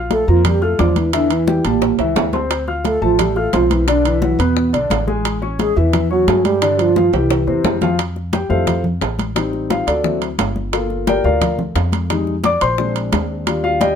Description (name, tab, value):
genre	Afro-Cuban jazz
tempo	175 BPM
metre	4/4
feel	straight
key	F major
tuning	A4 = 439 Hz
part	warm upright piano	accompaniment	0.0-14.0 s	C3 to F6	-19 LUFS	left 3 dB	none
part	upright bass	bass	0.0-13.9 s	G1 to G2	-21 LUFS	equal	none
part	reedy bass ocarina	melody	0.1-7.8 s	Bb3 to A4	-17 LUFS	right 2 dB	none
part	breathy trombone	second line	0.1-7.8 s	Bb2 to A3	-23 LUFS	right 5 dB	none
part	bongos	percussion	0.1-14.0 s	none	-26 LUFS	left 12 dB	none
part	congas	percussion	0.1-14.0 s	none	-24 LUFS	left 1 dB	none
part	timbales	percussion	0.1-14.0 s	none	-24 LUFS	right 9 dB	none
room	little or no reverb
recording	minimal, uncompressed stereo recording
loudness	-14 LUFS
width	side -8 dB against mid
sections	0.0-8.0 A section; 8.0-14.0 B section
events	drum fill 1.8-2.5, 7.1-8.0; upright piano solo 8.0-14.0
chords	0.0 Bb; 1.1 Em; 1.8 A7; 2.5 Dm7; 3.9 Bmadd11; 4.6 E7; 5.2 Amaj7; 6.6 G5; 7.3 C; 8.0 Fmaj7; 9.4 Am7b5; 10.0 D7; 10.7 Gm7; 12.1 Fm7; 12.8 Bb7